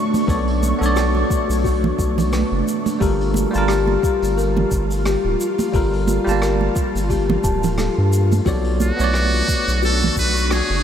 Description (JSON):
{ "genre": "sunset chillout", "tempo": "88 BPM", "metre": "4/4", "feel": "swing 57% on 16ths", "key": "unclear", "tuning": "A4 = 440 Hz", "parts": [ { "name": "bell-like tine electric piano", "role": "accompaniment", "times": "0.0-10.8 s", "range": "G3 to A5", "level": "-24 LUFS", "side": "moving between left 3 dB and right 4 dB", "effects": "medium stereo tremolo, auto-pan, ping-pong delay" }, { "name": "ethereal airy pad", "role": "sustained chords", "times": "0.0-10.8 s", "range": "A3 to C#6", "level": "-25 LUFS", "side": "right 2 dB", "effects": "ensemble chorus, built-in reverb, tremolo" }, { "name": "vintage brush drum kit", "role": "drums", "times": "0.1-10.7 s", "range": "hi-hat, rim click, shaker", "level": "-32 LUFS", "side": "equal", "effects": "none" }, { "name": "congas", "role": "percussion", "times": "0.1-10.7 s", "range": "none", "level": "-26 LUFS", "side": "right 5 dB", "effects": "none" }, { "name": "kalimba", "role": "arpeggios", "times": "0.3-10.8 s", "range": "F#4 to A5", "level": "-24 LUFS", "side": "left 7 dB", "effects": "ping-pong delay" }, { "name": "round analog bass", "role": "bass", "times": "0.3-10.8 s", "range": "D1 to G2", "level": "-20 LUFS", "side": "equal", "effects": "none" }, { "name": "electronic kick drum", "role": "drums", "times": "0.3-10.3 s", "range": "none", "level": "-23 LUFS", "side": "equal", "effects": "none" }, { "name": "trumpet with metal mute", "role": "melody", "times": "8.8-10.8 s", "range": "F#4 to B4", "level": "-20 LUFS", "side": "right 2 dB", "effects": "tape echo" } ], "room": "moderate huge ambient reverb, RT60 8.6 s", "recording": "dreamy mix soaked in reverb", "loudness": "-16 LUFS", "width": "side -9 dB against mid", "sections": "0.0-10.8 A section", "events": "none", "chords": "0.0 Bm9; 3.0 Gm9; 8.5 Bm9", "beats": "| 0.28 0.96 1.65 2.33 | 3.01 3.69 4.37 5.05 | 5.74 6.42 7.10 7.78 | 8.46 9.15 9.83 10.51" }